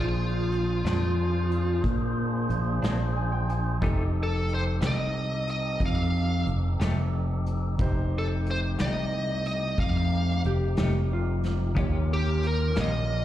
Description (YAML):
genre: slow blues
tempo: 60 BPM (dotted quarters)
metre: 12/8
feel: straight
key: unclear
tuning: A4 = 440 Hz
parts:
  - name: smooth overdriven lead guitar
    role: melody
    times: 0.0-13.2 s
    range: F4 to F5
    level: -30 LUFS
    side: equal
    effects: slapback echo
  - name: clear upright piano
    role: accompaniment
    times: 0.0-13.2 s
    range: D4 to Ab5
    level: -40 LUFS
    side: right 3 dB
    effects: slapback echo
  - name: tonewheel organ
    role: sustained chords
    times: 0.0-13.2 s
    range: A3 to C5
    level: -36 LUFS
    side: equal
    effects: slow rotary speaker
  - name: fretless electric bass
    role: bass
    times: 0.0-13.2 s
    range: F1 to Bb2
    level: -26 LUFS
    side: equal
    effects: lush chorus
  - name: vintage brush drum kit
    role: drums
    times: 0.5-12.9 s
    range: hi-hat, kick drum, snare drum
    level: -31 LUFS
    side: equal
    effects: none
  - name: clean electric guitar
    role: accompaniment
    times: 0.8-13.0 s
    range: Bb2 to G4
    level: -34 LUFS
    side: left 3 dB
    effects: tremolo, slapback echo
  - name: clean lap steel guitar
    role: second line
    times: 10.5-11.8 s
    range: F4 to G4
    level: -33 LUFS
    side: left 3 dB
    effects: slapback echo
room: studio reverb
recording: live gig heard through the venue's PA, recital hall reverb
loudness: -24 LUFS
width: side -12 dB against mid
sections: 0.0-13.2 A section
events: upright piano fill 2.8-3.8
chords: 0.0 Bb9; 3.8 F9; 11.8 Eb9